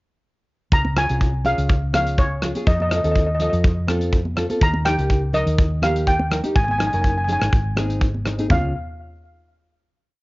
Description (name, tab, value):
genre	calypso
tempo	124 BPM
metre	4/4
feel	straight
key	Db major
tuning	A4 = 440 Hz
part	steel pan	melody	0.7-8.7 s	Db5 to Bb5	-23 LUFS	equal	cassette tape, plate reverb
part	hollow-body short-scale fingered electric bass	bass	0.7-8.7 s	Gb1 to F2	-22 LUFS	equal	none
part	modern studio drum kit	drums	0.7-8.6 s	hi-hat, kick drum, rim click, toms	-21 LUFS	equal	none
part	congas	percussion	0.8-8.7 s	none	-30 LUFS	right 1 dB	none
part	nylon-string guitar	accompaniment	1.0-8.7 s	Bb3 to Bb4	-27 LUFS	equal	plate reverb
room	light reverb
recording	home recording on cassette, nothing above 7.5 kHz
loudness	-17 LUFS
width	side -22 dB against mid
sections	0.7-8.5 verse; 8.5-10.2 final chord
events	none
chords	0.7 Dbmaj7; 2.7 F7; 4.6 Eb7; 6.6 Ab7sus4; 7.5 Ab; 8.5 Db